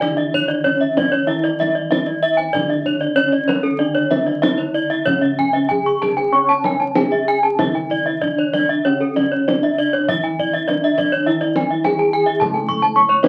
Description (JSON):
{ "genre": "Balinese gamelan", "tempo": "96 BPM", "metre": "4/4", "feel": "uneven beats", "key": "C# pelog", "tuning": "A4 = 440 Hz", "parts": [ { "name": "gamelan-type bronze metallophone", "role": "melody", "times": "0.0-13.3 s", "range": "C#4 to C#5", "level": "-23 LUFS", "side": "equal", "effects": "none" }, { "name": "gamelan-type bronze metallophone", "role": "accompaniment", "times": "0.0-13.3 s", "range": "C#3 to C#4", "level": "-34 LUFS", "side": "equal", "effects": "none" }, { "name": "gamelan-type bronze metallophone", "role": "arpeggios", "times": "0.0-13.1 s", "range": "A4-20c to C#6", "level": "-22 LUFS", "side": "equal", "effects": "none" }, { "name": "gamelan-type bossed gongs", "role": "bass", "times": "0.0-13.3 s", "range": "C#3 to C#5", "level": "-31 LUFS", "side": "equal", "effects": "none" }, { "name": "kendang", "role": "percussion", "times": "0.0-13.3 s", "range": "none", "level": "-26 LUFS", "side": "equal", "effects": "none" }, { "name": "gamelan-type bronze metallophone", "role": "arpeggios", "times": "0.3-13.3 s", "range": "C#5 to C#6", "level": "-23 LUFS", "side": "equal", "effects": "none" } ], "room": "wet small room ambience, RT60 0.5 s", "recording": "very old 78 rpm record, vinyl crackle", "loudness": "-18 LUFS", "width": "mono", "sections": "0.0-13.3 A section", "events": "none", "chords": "none" }